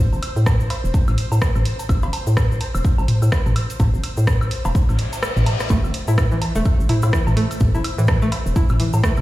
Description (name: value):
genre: minimal techno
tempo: 126 BPM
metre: 4/4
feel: swing 59% on 16ths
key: A minor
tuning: A4 = 440 Hz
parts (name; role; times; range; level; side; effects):
- hollow knocking FM bass; bass; 0.0-9.2 s; E1 to A2; -19 LUFS; equal; sidechain pumping
- pulsing gated texture; texture; 0.0-9.2 s; C5; -34 LUFS; left 1 dB; chorus, built-in reverb, sidechain pumping
- cabasa; percussion; 0.1-9.2 s; none; -40 LUFS; left 4 dB; none
- electronic woodblock, cowbell and toms; percussion; 0.1-9.2 s; none; -24 LUFS; equal; digital delay
- house drum kit; drums; 0.2-9.1 s; hi-hat, rim click; -28 LUFS; right 1 dB; none
- electronic kick drum; drums; 0.5-9.1 s; none; -19 LUFS; equal; none
- reverse cymbal; sound effects; 4.9-5.7 s; none; -30 LUFS; left 4 dB; none
- string-like resonator pluck; riff; 5.7-9.1 s; E3 to E4; -24 LUFS; right 1 dB; chorus, sidechain pumping, dub echo
room: little or no reverb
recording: played on a big sound system in a bare room, stone room reverb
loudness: -16 LUFS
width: side -17 dB against mid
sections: 0.0-9.2 A section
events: reverse cymbal 4.9-5.7; kick drops out 5.2-5.7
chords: 0.0 Am